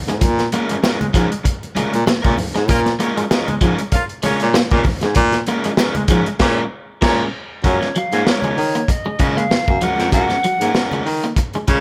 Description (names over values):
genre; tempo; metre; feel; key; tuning
funk; 97 BPM; 4/4; swing 56% on 16ths; Bb minor; A4 = 440 Hz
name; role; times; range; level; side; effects
crunchy overdriven guitar; accompaniment; 0.1-11.8 s; Ab3 to Bb4; -26 LUFS; equal; spring reverb
clean electric guitar; riff; 0.1-11.7 s; F3 to Bb3; -25 LUFS; equal; none
warm baritone saxophone; bass; 0.1-11.8 s; F2 to Eb3; -22 LUFS; equal; none
crunchy breakbeat drum kit; drums; 0.1-11.8 s; crash cymbal, hi-hat, kick drum, snare drum; -21 LUFS; equal; none
congas; percussion; 0.2-11.8 s; none; -32 LUFS; equal; none
group handclap; percussion; 0.8-6.0 s; none; -34 LUFS; equal; none
warm horn section; second line; 2.7-7.2 s; Bb3 to F5; -26 LUFS; equal; none
silver concert flute; melody; 7.7-11.0 s; Db5 to Gb5; -23 LUFS; equal; none
room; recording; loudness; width
light reverb; none; -18 LUFS; mono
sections
0.0-7.6 A section; 7.6-11.8 B section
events
band accent 6.4-7.6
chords
0.0 Bbm7; 7.6 Gbmaj9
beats
| 0.22 0.83 1.45 2.07 | 2.69 3.31 3.93 4.55 | 5.17 5.78 6.40 7.02 | 7.64 8.26 8.88 9.50 | 10.12 10.74 11.37